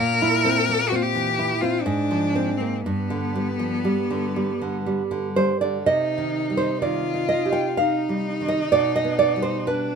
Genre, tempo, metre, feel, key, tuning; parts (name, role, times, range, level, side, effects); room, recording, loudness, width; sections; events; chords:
romantic duo for cello and classical guitar; 59-65 BPM; 3/4; rubato; C minor; A4 = 439 Hz
clear cello; melody; 0.0-10.0 s; B3 to Bb4; -24 LUFS; left 2 dB
nylon-string guitar; accompaniment; 0.0-10.0 s; G2 to G5; -22 LUFS; right 2 dB
light reverb; minimal, uncompressed stereo recording; -20 LUFS; side -6 dB against mid
0.0-5.9 A section; 5.9-10.0 B section
0.0 C7/Bb; 1.8 Fm/Ab; 2.8 G; 5.9 Cm; 8.7 G/B